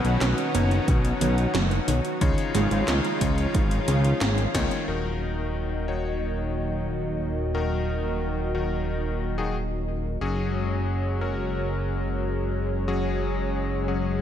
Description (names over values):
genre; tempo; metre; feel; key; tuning
synthwave; 90 BPM; 4/4; straight; unclear; A4 = 437 Hz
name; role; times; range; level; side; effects
lush unison pad; sustained chords; 0.0-14.2 s; D#3 to F#4; -29 LUFS; equal; chorus, sidechain pumping
bright electric grand piano; stabs; 0.0-14.2 s; B2 to C#5; -31 LUFS; left 5 dB; tape echo
fat analog bass; bass; 0.0-14.2 s; D#1 to C#2; -26 LUFS; equal; sidechain pumping
80s electronic pad drums; drums; 0.0-5.0 s; crash cymbal, handclaps, hi-hat, snare drum; -30 LUFS; equal; low-pass filter on hats, low-pass filter on snare, low-pass filter on cymbals, gated reverb
wide unison pluck; arpeggios; 0.2-4.7 s; D#3 to E#4; -31 LUFS; right 3 dB; cassette tape, tape echo
electronic kick drum; drums; 0.9-4.7 s; none; -25 LUFS; equal; none
room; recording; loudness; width
light reverb; none; -23 LUFS; side -10 dB against mid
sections
0.0-4.9 A section; 4.9-14.2 B section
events
drum fill 4.5-4.9; band accent 4.5-4.9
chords
0.0 Badd9; 2.2 C#add9; 4.9 D#m; 10.2 F#sus2